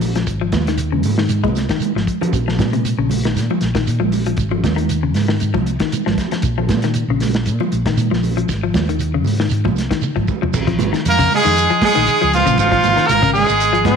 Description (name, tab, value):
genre	afrobeat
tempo	117 BPM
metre	4/4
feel	swing 54% on 16ths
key	Bb minor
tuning	A4 = 440 Hz
part	semi-hollow electric guitar	arpeggios	0.0-13.9 s	C3 to Ab3	-22 LUFS	left 10 dB	lush chorus
part	hollow-body short-scale fingered electric bass	bass	0.0-14.0 s	Ab1 to Bb2	-20 LUFS	equal	none
part	warm soul drum kit	drums	0.0-14.0 s	crash cymbal, hi-hat, kick drum, snare drum, toms	-23 LUFS	equal	none
part	congas	percussion	0.0-14.0 s	none	-22 LUFS	right 11 dB	none
part	shekere	percussion	0.0-13.7 s	none	-28 LUFS	right 9 dB	none
part	brilliant trumpet	melody	11.1-14.0 s	F4 to Bb4	-14 LUFS	equal	none
part	raspy tenor saxophone	second line	11.1-14.0 s	F3 to Bb3	-20 LUFS	right 11 dB	slapback echo
part	bright trombone section	second line	13.8-14.0 s	C4	-17 LUFS	left 13 dB	none
room	moderate echo chamber reverb, RT60 1.3 s, small room ambience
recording	1960s-style stereo with parts hard left and right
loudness	-14 LUFS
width	side -6 dB against mid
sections	0.0-10.5 A section; 10.5-14.0 B section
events	drum fill 1.6-2.3, 10.0-10.5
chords	0.3 Ab5; 2.3 Bb5; 4.4 Ab5; 6.4 Bb5; 8.5 Ab5; 10.5 Bbm7; 12.6 Ab5